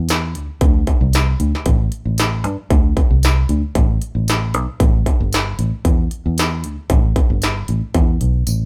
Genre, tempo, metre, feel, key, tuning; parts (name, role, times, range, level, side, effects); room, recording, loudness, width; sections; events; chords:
straight-eighth soul blues; 114 BPM; 4/4; straight; A minor; A4 = 440 Hz
fingered electric bass; bass; 0.0-8.7 s; G1 to G2; -20 LUFS; equal
industrial drum kit; drums; 0.1-8.6 s; hi-hat, kick drum, snare drum, tambourine; -19 LUFS; equal; distortion
light reverb; band playing live in one room; -17 LUFS; mono
0.0-8.7 A section
break 8.5